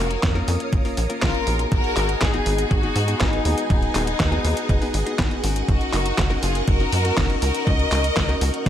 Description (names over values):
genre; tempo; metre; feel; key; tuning
italo disco; 121 BPM; 4/4; straight; unclear; A4 = 439 Hz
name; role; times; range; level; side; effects
rich studio violin section; melody; 0.0-8.7 s; Cb4 to Eb5; -26 LUFS; left 2 dB; digital delay
string machine, full ensemble; sustained chords; 0.0-8.7 s; Ab4 to Eb6; -29 LUFS; right 1 dB; phaser, ensemble chorus
direct-recorded clean electric guitar; stabs; 0.0-8.7 s; Bb3 to Bb4; -30 LUFS; left 4 dB; spring reverb
tight sequencer bass; bass; 0.0-8.7 s; Eb1 to Ab2; -23 LUFS; equal; none
detuned 8-bit digital drum machine; drums; 0.1-8.7 s; handclaps, hi-hat, snare drum; -26 LUFS; equal; none
electronic kick drum; drums; 0.2-8.7 s; none; -22 LUFS; equal; none
room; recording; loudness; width
digital ambience; none; -18 LUFS; side -10 dB against mid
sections
0.0-8.7 A section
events
none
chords
0.0 Bbm; 1.7 Abm7; 5.7 Gb6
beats
0.23 0.73 1.22 | 1.72 2.21 2.71 3.21 | 3.70 4.20 4.69 5.19 | 5.69 6.18 6.68 7.17 | 7.67 8.16 8.66